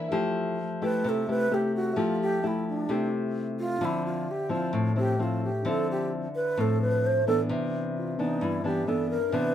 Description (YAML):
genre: bossa nova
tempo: 130 BPM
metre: 4/4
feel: straight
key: unclear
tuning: A4 = 440 Hz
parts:
  - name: mellow tine electric piano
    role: accompaniment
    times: 0.0-9.5 s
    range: C4 to E5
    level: -36 LUFS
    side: equal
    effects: none
  - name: nylon-string guitar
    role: accompaniment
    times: 0.0-9.5 s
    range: G2 to G4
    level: -28 LUFS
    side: left 2 dB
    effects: none
  - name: breathy wooden-headed alto flute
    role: melody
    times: 0.8-9.5 s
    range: D4 to C5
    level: -28 LUFS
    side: right 2 dB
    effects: none
room: moderate studio ambience, RT60 0.5 s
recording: band playing live in one room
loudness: -25 LUFS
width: side -10 dB against mid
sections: 0.1-9.5 A section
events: alto flute solo 0.1-9.5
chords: 0.1 Fmaj9; 3.8 Dm9; 7.5 Cmaj9